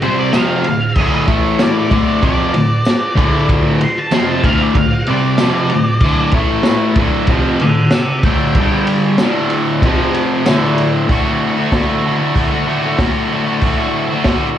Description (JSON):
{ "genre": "garage rock duo or trio", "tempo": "95 BPM", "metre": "4/4", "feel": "straight", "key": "unclear", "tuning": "A4 = 440 Hz", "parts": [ { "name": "octave-fuzz lead guitar", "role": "melody", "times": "0.0-8.9 s", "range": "C5 to C6", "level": "-19 LUFS", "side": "equal", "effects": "distortion, slapback echo" }, { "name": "cranked stack guitar", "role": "riff", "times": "0.0-14.6 s", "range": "D2 to F#4", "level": "-14 LUFS", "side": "equal", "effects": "overdrive" }, { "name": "crunchy breakbeat drum kit", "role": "drums", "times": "0.0-14.4 s", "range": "crash cymbal, hi-hat, kick drum, ride cymbal, snare drum", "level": "-17 LUFS", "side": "equal", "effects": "none" }, { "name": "tambourine", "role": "percussion", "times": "0.3-10.6 s", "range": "none", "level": "-35 LUFS", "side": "right 1 dB", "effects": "none" } ], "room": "light reverb", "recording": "live gig heard through the venue's PA, cassette tape, club reverb", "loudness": "-12 LUFS", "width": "side -10 dB against mid", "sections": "0.0-11.1 A section; 11.1-14.6 B section", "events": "lead electric guitar solo 0.0-11.1", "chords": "0.0 D5; 1.3 A5; 1.9 D5; 6.3 A5; 7.0 D5; 8.6 G5; 9.2 D5; 9.8 F5; 10.5 D5; 11.1 D", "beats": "0.34 | 0.98 1.61 2.24 2.87 | 3.50 4.13 4.76 5.40 | 6.03 6.66 7.29 7.93 | 8.56 9.19 9.82 10.46 | 11.09 11.73 12.36 13.00 | 13.63 14.27" }